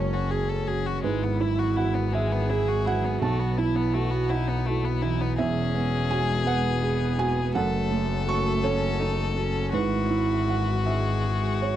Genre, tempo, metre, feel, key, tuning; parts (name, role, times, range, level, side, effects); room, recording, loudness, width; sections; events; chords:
neoclassical piano and strings; 55 BPM (dotted quarters); 6/8; rubato; E major; A4 = 440 Hz
warm violin; melody; 0.0-11.8 s; G#3 to A4; -31 LUFS; left 8 dB
warm cello; second line; 0.0-11.8 s; A3 to G#4; -32 LUFS; right 3 dB
felt-muted upright piano; accompaniment; 0.0-11.8 s; B1 to C#6; -28 LUFS; right 5 dB
warbly tape-like pad; sustained chords; 0.0-11.8 s; E3 to E5; -38 LUFS; left 1 dB
warm double bass; bass; 0.0-11.8 s; E1 to B1; -27 LUFS; left 1 dB
little or no reverb; dry, close 1970s-style studio recording; -23 LUFS; side -11 dB against mid
0.0-11.8 A section
0.0 F#madd9; 1.0 Eadd9/G#; 3.2 B7sus4; 5.4 Eadd9; 7.5 F#m; 9.7 Eadd9/G#